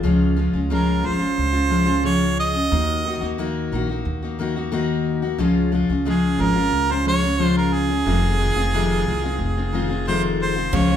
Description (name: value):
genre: acoustic pop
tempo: 90 BPM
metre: 4/4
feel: straight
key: Db major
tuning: A4 = 444 Hz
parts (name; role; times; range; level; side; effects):
- picked steel-string acoustic guitar; accompaniment; 0.0-11.0 s; F2 to Gb4; -21 LUFS; left 2 dB; none
- upright bass; bass; 0.0-11.0 s; F1 to Eb2; -24 LUFS; right 1 dB; none
- clear harmonica; melody; 0.7-11.0 s; Ab4 to Eb5; -23 LUFS; right 4 dB; none
- picked steel-string acoustic guitar; arpeggios; 10.7-11.0 s; F3 to F4; -26 LUFS; right 6 dB; none
- cloth-damped thuddy drum kit; drums; 10.7-10.9 s; crash cymbal, kick drum; -25 LUFS; right 1 dB; none
room: moderate recital hall reverb, RT60 1.2 s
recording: recorded in a church or concert hall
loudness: -18 LUFS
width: side -9 dB against mid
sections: 0.0-10.7 A section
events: none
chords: 0.0 Db; 2.7 Ebm; 5.4 Db; 8.1 Fm7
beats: | 0.04 0.71 1.38 2.04 | 2.71 3.38 4.05 4.72 | 5.38 6.05 6.72 7.39 | 8.06 8.72 9.39 10.06 | 10.73